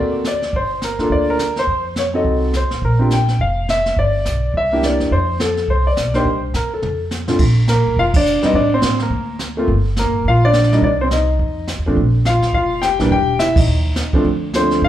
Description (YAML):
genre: jazz piano trio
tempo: 210 BPM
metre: 4/4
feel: swing 60% on 8ths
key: F major, Bb major from 7.4 s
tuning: A4 = 439 Hz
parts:
  - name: warm concert grand piano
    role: melody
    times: 0.0-14.9 s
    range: Bb2 to G5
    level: -17 LUFS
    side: equal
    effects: none
  - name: upright bass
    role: bass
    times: 0.0-14.9 s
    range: E1 to C3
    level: -19 LUFS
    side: equal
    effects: none
  - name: jazz brush drum kit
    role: drums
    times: 0.2-14.9 s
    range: brushed snare drum, crash cymbal, hi-hat, kick drum, snare drum, toms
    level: -22 LUFS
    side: right 1 dB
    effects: none
room: moderate large studio reverb, RT60 1.2 s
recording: band playing live in one room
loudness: -14 LUFS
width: side -12 dB against mid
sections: 0.0-7.4 A section; 7.4-14.9 B section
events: drum fill 6.8-7.4; band accent 8.1, 13.5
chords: 0.0 D7b13; 0.5 Gm9; 1.7 F7b9; 2.8 Bb5; 4.0 G5; 4.5 C9; 5.1 F; 6.3 N.C.; 6.8 F; 7.4 Bb; 8.5 Amadd11; 9.1 N.C.; 9.7 Gm7; 10.8 Cm; 11.4 N.C.; 12.0 Bb5; 13.1 Edim; 13.7 N.C.; 14.2 Dm7